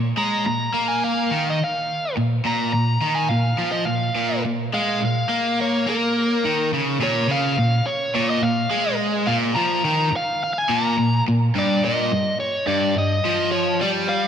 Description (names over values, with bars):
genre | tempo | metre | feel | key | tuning
rock | 106 BPM | 4/4 | straight | Bb dorian | A4 = 440 Hz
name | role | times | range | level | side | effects
cranked stack guitar | riff | 0.0-14.3 s | G2 to Bb3 | -20 LUFS | equal | overdrive, spring reverb, slapback echo
biting lead guitar | melody | 0.2-14.3 s | Bb4 to Bb5 | -23 LUFS | equal | overdrive
room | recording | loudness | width
wet concert hall reverb, RT60 2.5 s | big arena sound | -18 LUFS | side -8 dB against mid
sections
0.0-7.0 A section; 7.0-14.3 B section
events
none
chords
0.0 Bb5; 11.5 G7(no3)